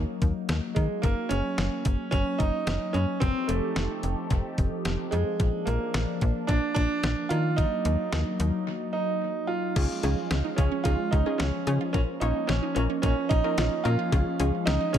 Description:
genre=synth-pop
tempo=110 BPM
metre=4/4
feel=straight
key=Eb minor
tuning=A4 = 440 Hz
part: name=clear grand piano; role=melody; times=0.0-15.0 s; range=Ab3 to F4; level=-30 LUFS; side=right 4 dB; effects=analog delay
part: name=phased analog pad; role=sustained chords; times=0.0-15.0 s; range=F3 to A4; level=-33 LUFS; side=left 1 dB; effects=phaser, chorus
part: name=slap-like FM bass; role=bass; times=0.0-15.0 s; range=F1 to Eb3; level=-27 LUFS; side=left 1 dB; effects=none
part: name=detuned 8-bit digital drum machine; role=drums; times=0.2-15.0 s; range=crash cymbal, hi-hat, kick drum, snare drum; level=-28 LUFS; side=left 1 dB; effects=analog delay
part: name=warbly dusty pluck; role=accompaniment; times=9.8-15.0 s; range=Db4 to Db5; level=-33 LUFS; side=left 4 dB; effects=chorus
part: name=wide unison pluck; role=arpeggios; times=9.8-15.0 s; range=Db4 to F4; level=-36 LUFS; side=moving between left 1 dB and right 5 dB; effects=none
room=light reverb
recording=echo-heavy mix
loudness=-24 LUFS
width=side -10 dB against mid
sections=0.0-9.8 A section; 9.8-15.0 B section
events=break 8.7-9.8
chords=0.0 Ebm; 1.0 Gb; 3.2 F7; 5.4 Bb; 7.3 Ebm; 9.8 Db; 11.9 Bbm; 14.1 Db

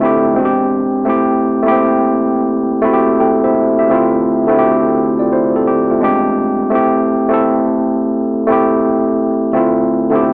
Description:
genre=hip hop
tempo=85 BPM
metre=4/4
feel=swing 65% on 16ths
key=unclear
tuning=A4 = 440 Hz
part: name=tine electric piano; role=solo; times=0.0-10.3 s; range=E2 to G5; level=-14 LUFS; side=equal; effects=cassette tape
room=little or no reverb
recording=dry, gritty hardware recording, cassette tape, small speaker sound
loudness=-14 LUFS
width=mono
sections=0.0-10.3 A section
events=none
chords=0.4 E7alt; 1.1 Am7; 3.9 Dm9; 6.0 E7alt; 6.7 Am7; 9.5 Dm9

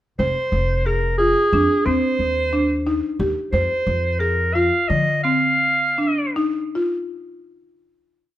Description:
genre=contemporary instrumental, chamber music in an uneven meter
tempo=178 BPM (eighths)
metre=5/8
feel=uneven beats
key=F dorian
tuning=A4 = 438 Hz
part: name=bright clarinet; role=melody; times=0.2-6.3 s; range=Ab4 to F5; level=-20 LUFS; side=right 1 dB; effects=none
part: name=buzzing marimba with medium hard mallets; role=arpeggios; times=0.2-7.0 s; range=D3 to C5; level=-22 LUFS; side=left 1 dB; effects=none
part: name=upright bass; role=bass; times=0.2-5.0 s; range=F1 to F3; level=-23 LUFS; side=equal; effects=none
room=light reverb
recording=close, detailed microphones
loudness=-17 LUFS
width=side -13 dB against mid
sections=0.2-7.2 A section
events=slowing down 3.5-7.2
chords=0.2 Fm; 1.9 Cm/Eb; 3.5 Fm; 5.3 F5

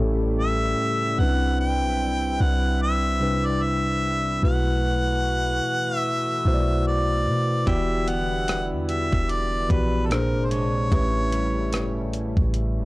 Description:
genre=contemporary R&B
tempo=74 BPM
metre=4/4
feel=swing 58% on 16ths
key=E minor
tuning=A4 = 440 Hz
part: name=mellow tine electric piano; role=accompaniment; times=0.0-12.8 s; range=A2 to D5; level=-26 LUFS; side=left 1 dB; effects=medium stereo tremolo
part: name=chorused pulse-width pad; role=sustained chords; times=0.0-12.8 s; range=B#2 to B4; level=-33 LUFS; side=equal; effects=none
part: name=clean 808-style bass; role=bass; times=0.0-12.8 s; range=E1 to B2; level=-25 LUFS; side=equal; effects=none
part: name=warm harmonica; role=melody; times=0.4-12.1 s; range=A4 to G5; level=-26 LUFS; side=equal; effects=none
part: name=direct-recorded clean electric guitar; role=arpeggios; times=7.7-12.8 s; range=A2 to G4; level=-32 LUFS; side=right 2 dB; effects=none
part: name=crisp 8-bit digital drum machine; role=drums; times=7.7-12.8 s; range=hi-hat, kick drum, rim click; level=-27 LUFS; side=equal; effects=none
room=digital ambience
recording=dry, gritty hardware recording, cassette tape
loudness=-21 LUFS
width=side -20 dB against mid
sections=0.0-12.8 A section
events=tine electric piano fill 12.5-12.8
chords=0.0 A7; 1.2 Cmaj7; 4.4 B7sus4; 7.7 Em7; 10.1 A#9; 10.9 A7

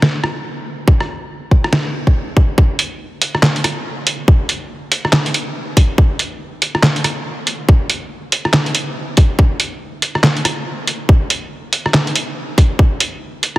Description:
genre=dubstep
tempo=141 BPM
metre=4/4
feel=swing 61% on 16ths, half-time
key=none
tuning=none
part: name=trip hop sampler-style drum kit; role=drums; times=0.0-13.6 s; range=handclaps, hi-hat, rim click, snare drum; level=-16 LUFS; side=equal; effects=none
part: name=electronic kick drum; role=drums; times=0.9-12.9 s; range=none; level=-11 LUFS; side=equal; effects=none
room=light reverb, digital ambience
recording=heavily compressed radio sound, multiband compression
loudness=-13 LUFS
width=side -18 dB against mid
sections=0.0-2.6 A section; 2.6-13.6 B section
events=drop 2.6-13.6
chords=none

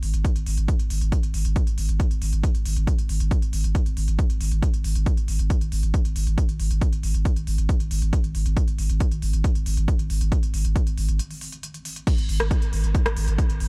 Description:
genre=driving peak-time techno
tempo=137 BPM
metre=4/4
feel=straight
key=unclear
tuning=A4 = 440 Hz
part: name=saturated sub bass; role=bass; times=0.0-13.7 s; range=G#1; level=-27 LUFS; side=equal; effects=overdrive, sidechain pumping, low-pass filter
part: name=techno drum kit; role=drums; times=0.0-13.7 s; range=crash cymbal, hi-hat, rim click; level=-36 LUFS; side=equal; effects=none
part: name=electronic kick drum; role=drums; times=0.2-13.5 s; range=none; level=-25 LUFS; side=equal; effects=none
room=little or no reverb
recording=none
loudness=-23 LUFS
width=mono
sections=0.0-12.1 A section; 12.1-13.7 B section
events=break 11.2-12.1; drop 12.1-13.7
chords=none

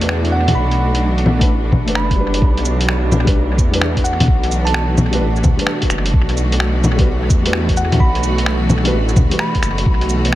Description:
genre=future garage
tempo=129 BPM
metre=4/4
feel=swing 66% on 16ths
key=unclear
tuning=A4 = 442 Hz
part: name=felt-muted upright piano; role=accompaniment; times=0.0-9.4 s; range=G3 to B4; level=-24 LUFS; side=left 2 dB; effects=sidechain pumping, analog delay
part: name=bright studio string section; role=sustained chords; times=0.0-10.4 s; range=B2 to F#4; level=-22 LUFS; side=right 1 dB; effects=sidechain pumping
part: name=swelling detuned saw bass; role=bass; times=0.0-10.4 s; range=F#1 to E2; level=-18 LUFS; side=equal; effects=sidechain pumping
part: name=lo-fi sampler-style drum kit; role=drums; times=0.0-10.4 s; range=bongos, cabasa, finger snaps, hi-hat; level=-19 LUFS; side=left 1 dB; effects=dub echo
part: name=backwards swelling texture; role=texture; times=0.0-10.4 s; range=F#4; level=-31 LUFS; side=right 1 dB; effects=built-in reverb
part: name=thumb-piano-like synth pluck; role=melody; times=0.3-5.0, 7.8-9.8 s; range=F#5 to B5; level=-25 LUFS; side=right 1 dB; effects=chorus, dub echo
part: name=electronic kick drum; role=drums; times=1.4-10.0 s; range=none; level=-16 LUFS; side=equal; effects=none
room=light reverb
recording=echo-heavy mix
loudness=-13 LUFS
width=side -15 dB against mid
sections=0.0-2.4 A section; 2.4-10.4 B section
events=none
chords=0.0 Asus4

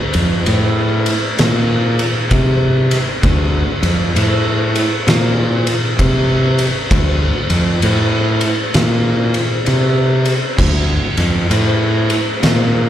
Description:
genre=stoner and doom metal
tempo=65 BPM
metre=4/4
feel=swing 64% on 8ths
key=D minor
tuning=A4 = 440 Hz
part: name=fuzz fingered electric bass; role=bass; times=0.1-12.9 s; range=D2 to C3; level=-15 LUFS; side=equal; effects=overdrive
part: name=oversized low-tuned drum kit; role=drums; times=0.1-12.7 s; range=crash cymbal, kick drum, ride cymbal, snare drum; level=-16 LUFS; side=equal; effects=none
room=little or no reverb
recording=live gig heard through the venue's PA, recital hall reverb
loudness=-13 LUFS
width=side -11 dB against mid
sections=0.0-12.9 A section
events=none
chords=none

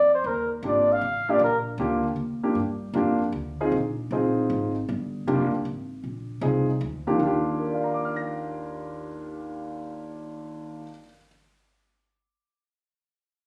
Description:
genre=jazz, small-group swing and bop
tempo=156 BPM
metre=3/4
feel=swing 66% on 8ths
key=Eb major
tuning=A4 = 441 Hz
part: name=trumpet with bucket mute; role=melody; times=0.0-1.6 s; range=Bb4 to F5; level=-23 LUFS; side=equal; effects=plate reverb
part: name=upright bass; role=bass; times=0.0-10.8 s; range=F1 to G2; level=-34 LUFS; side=equal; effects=none
part: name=warm concert grand piano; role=accompaniment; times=0.6-11.3 s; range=Eb2 to Bb6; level=-28 LUFS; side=equal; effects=none
room=wet studio ambience, RT60 0.5 s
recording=recorded on a phone in the room, club reverb, faint mains hum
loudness=-26 LUFS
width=mono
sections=0.0-2.6 A section; 2.6-7.2 B section; 7.2-9.5 C section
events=none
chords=0.3 Ebmaj9; 2.6 Gm7; 3.7 Bb7sus4; 4.9 Gm7; 6.0 Bb7sus4; 7.2 Ebmaj9

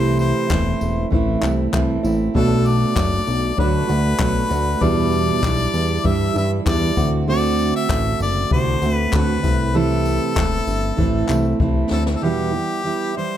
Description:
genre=acoustic pop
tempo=97 BPM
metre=4/4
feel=straight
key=E minor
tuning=A4 = 440 Hz
part: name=clear harmonica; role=melody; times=0.0-13.4 s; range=G4 to E5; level=-24 LUFS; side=left 4 dB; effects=plate reverb
part: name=fingerpicked steel-string acoustic guitar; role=accompaniment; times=0.0-13.4 s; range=E2 to F#4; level=-20 LUFS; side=right 4 dB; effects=none
part: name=fat analog bass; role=bass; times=0.0-12.2 s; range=E1 to G2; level=-21 LUFS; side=left 1 dB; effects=none
part: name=jazz brush drum kit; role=drums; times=0.2-12.2 s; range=handclaps, kick drum, snare drum, tambourine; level=-23 LUFS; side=left 3 dB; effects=none
room=light reverb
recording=none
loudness=-16 LUFS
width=side -11 dB against mid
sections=0.0-12.2 A section; 12.2-13.4 B section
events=drum fill 11.6-12.2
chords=0.0 Am; 2.4 Bm7; 4.8 Em7; 7.0 D7; 9.4 Am; 12.2 Em

